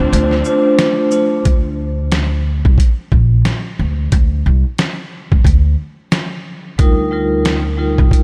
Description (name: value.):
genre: hip hop, boom-bap hip-hop.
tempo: 90 BPM.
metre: 4/4.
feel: swing 58% on 16ths.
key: unclear.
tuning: A4 = 438 Hz.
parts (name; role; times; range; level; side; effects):
vibraphone with soft mallets; accompaniment; 0.0-1.4, 6.8-8.2 s; G3 to C5; -18 LUFS; equal; high-pass filter, low-pass filter.
warm studio string section; sustained chords; 0.0-1.4 s; C4 to F4; -29 LUFS; equal; high-pass filter, low-pass filter.
upright bass; bass; 0.0-8.1 s; Bb1 to D2; -18 LUFS; equal; none.
dusty soul sampler-style drum kit; drums; 0.1-8.2 s; hi-hat, kick drum, shaker, snare drum; -17 LUFS; equal; overdrive.
room: light reverb, small room ambience.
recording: none.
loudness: -15 LUFS.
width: mono.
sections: 0.0-1.5 A section; 1.5-8.2 B section.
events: break 0.0-1.5.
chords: 0.0 Dm7; 1.5 Bb; 3.8 N.C.; 6.8 Ebadd9/D.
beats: 0.12 0.79 | 1.46 2.12 2.79 3.46 | 4.12 4.79 5.46 6.12 | 6.79 7.46 8.12.